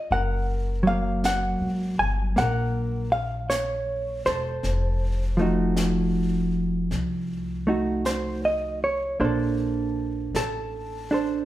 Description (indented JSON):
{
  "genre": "jazz ballad",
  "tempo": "53 BPM",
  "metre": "4/4",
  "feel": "swing 66% on 8ths",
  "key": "unclear",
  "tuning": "A4 = 440 Hz",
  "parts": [
    { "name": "hollow-body jazz guitar", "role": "accompaniment", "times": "0.0-11.4 s", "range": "F3 to Ab5", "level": "-24 LUFS", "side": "right 1 dB", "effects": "none" },
    { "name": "upright bass", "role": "bass", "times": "0.1-11.4 s", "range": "E1 to C2", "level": "-29 LUFS", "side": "left 1 dB", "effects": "none" },
    { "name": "jazz brush drum kit", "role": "drums", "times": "0.1-11.4 s", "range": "brushed snare drum, hi-hat, snare drum", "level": "-37 LUFS", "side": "left 2 dB", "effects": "none" }
  ],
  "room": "moderate large studio reverb, RT60 1.1 s",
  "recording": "band playing live in one room",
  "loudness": "-23 LUFS",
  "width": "side -14 dB against mid",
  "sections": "0.0-11.4 A section",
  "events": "none",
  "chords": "0.1 Gbadd9; 4.6 F7b9; 9.2 Bbmaj9",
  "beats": "| 0.10 1.23 2.36 3.49 | 4.63 5.76 6.90 8.05 | 9.20 10.34"
}